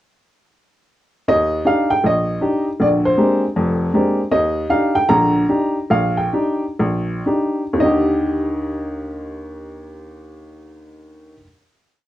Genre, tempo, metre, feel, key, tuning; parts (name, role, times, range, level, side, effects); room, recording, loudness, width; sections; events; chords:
jazz; 110-158 BPM; 4/4; swing 64% on 8ths; Eb major; A4 = 440 Hz
warm upright piano; solo; 1.3-11.4 s; F1 to Bb5; -16 LUFS; equal
wet club reverb, RT60 0.5 s; worn, warbling old tape, cassette tape, warbly pitch drift; -16 LUFS; side -14 dB against mid
1.3-7.8 A section; 7.8-12.1 final chord
slowing down 4.3-7.8
1.3 Ebmaj7; 2.8 Bb13; 4.3 Ebmaj7